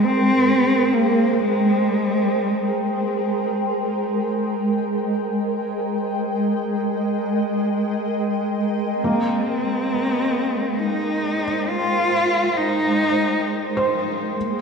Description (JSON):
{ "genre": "ambient", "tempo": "free time", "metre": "none", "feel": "none", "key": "unclear", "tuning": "A4 = 439 Hz", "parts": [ { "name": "dark cello", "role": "melody", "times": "0.0-3.2, 9.0-14.6 s", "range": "Ab3 to F4", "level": "-20 LUFS", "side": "equal", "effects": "ping-pong delay" }, { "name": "granular cloud pad", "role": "sustained chords", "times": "0.0-14.6 s", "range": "Ab3 to G5", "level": "-22 LUFS", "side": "right 1 dB", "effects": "built-in reverb" }, { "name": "felt-muted upright piano", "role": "arpeggios", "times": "9.0-14.6 s", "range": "Bb3 to C5", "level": "-26 LUFS", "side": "right 1 dB", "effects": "ping-pong delay" } ], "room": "wet concert hall reverb, RT60 1.9 s, small room ambience", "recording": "dark, warm production", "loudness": "-19 LUFS", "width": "side -5 dB against mid", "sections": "0.0-14.6 A section", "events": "none", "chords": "0.0 Abmaj7; 3.6 Cm7/Ab" }